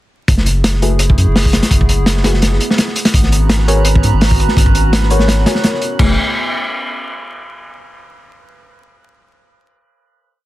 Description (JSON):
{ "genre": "drum and bass, jungle", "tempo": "168 BPM", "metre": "4/4", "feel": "swing 54% on 16ths", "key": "unclear", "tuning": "A4 = 440 Hz", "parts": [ { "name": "warbly tape-like pad", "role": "sustained chords", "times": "0.3-6.2 s", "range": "A3 to A#5", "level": "-23 LUFS", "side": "right 3 dB", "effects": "chorus, built-in reverb, vintage 12-bit sampler grit" }, { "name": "soft dub sub bass", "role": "bass", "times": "0.3-6.2 s", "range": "F#1 to G#2", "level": "-14 LUFS", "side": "equal", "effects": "none" }, { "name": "crunchy breakbeat drum kit", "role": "drums", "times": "0.3-6.1 s", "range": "crash cymbal, hi-hat, kick drum, snare drum", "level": "-14 LUFS", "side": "equal", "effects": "none" }, { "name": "deep mellow chord stab", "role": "stabs", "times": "0.8-6.1 s", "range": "A3 to C#5", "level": "-21 LUFS", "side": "left 3 dB", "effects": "chorus, dub echo" }, { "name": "drifting glass-harmonics texture", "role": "texture", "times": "3.4-6.0 s", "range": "B4", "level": "-27 LUFS", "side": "right 6 dB", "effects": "chorus, built-in reverb" } ], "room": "small room ambience", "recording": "dense, heavily limited modern master, vinyl crackle", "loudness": "-11 LUFS", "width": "side -16 dB against mid", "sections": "0.3-6.0 drop; 6.0-7.4 final chord", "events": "drop 0.3-6.0", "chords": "0.3 F#m11; 3.1 G#m11; 6.0 F#m11" }